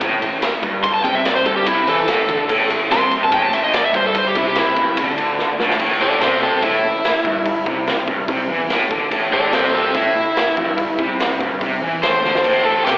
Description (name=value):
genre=blues rock power trio and southern rock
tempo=145 BPM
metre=4/4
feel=straight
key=A minor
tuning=A4 = 440 Hz
part: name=crunchy overdriven guitar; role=riff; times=0.0-13.0 s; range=G2 to E3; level=-20 LUFS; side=equal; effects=harmonic tremolo, slapback echo
part: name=fuzz fingered electric bass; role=bass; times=0.0-13.0 s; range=G1 to E2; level=-30 LUFS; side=equal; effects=overdrive
part: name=raw garage drum kit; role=drums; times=0.0-13.0 s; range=crash cymbal, hi-hat, kick drum, ride cymbal, snare drum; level=-21 LUFS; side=equal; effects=none
part: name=overdriven slide guitar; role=melody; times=0.8-13.0 s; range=C4 to C6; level=-18 LUFS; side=equal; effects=analog delay
room=moderate club reverb, RT60 0.7 s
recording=live gig heard through the venue's PA, recital hall reverb, telephone sound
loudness=-15 LUFS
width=side -21 dB against mid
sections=0.0-5.8 A section; 5.8-13.0 A section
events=electric slide guitar solo 0.0-5.8, 5.8-13.0; drum fill 5.4-5.8, 12.2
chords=0.0 Am